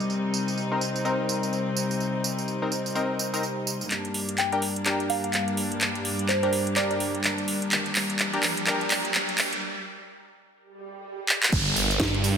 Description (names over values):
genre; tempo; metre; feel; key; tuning
bass house; 126 BPM; 4/4; swing 60% on 16ths; G minor; A4 = 441 Hz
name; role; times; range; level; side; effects
dark studio string section; sustained chords; 0.0-12.4 s; G2 to D5; -29 LUFS; left 1 dB; vintage 12-bit sampler grit, sidechain pumping, low-pass filter
band-passed chord stab; stabs; 0.0-9.6 s; C4 to Bb4; -31 LUFS; left 2 dB; chorus, cassette tape, sidechain pumping, tape echo
house drum kit; drums; 0.0-12.4 s; crash cymbal, handclaps, hi-hat, snare drum, tambourine; -26 LUFS; right 1 dB; overdrive
riser, swell and downlifter; sound effects; 6.1-12.4 s; none; -32 LUFS; right 1 dB; none
soft synth bell; melody; 4.4-7.0 s; C5 to G5; -30 LUFS; right 1 dB; chorus, phaser, vintage 12-bit sampler grit, tape echo
phased detuned saw bass; bass; 11.5-12.4 s; G1 to G2; -25 LUFS; right 1 dB; phaser, tube saturation, sidechain pumping
electronic kick drum; drums; 11.5-12.1 s; none; -29 LUFS; right 1 dB; overdrive
room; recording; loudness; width
moderate lush hall reverb, RT60 2.0 s; high-pass filter, low-pass filter; -23 LUFS; side -7 dB against mid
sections
0.0-3.9 A section; 3.9-11.5 B section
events
filter sweep on synth stab 0.0-3.9; build-up 3.9-11.5; drum fill 3.9-9.6, 11.3; filter sweep 3.9-11.5; riser 6.1-9.6; break 9.6-11.5; swell 10.8-11.5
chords
0.0 Cm7; 3.9 Gm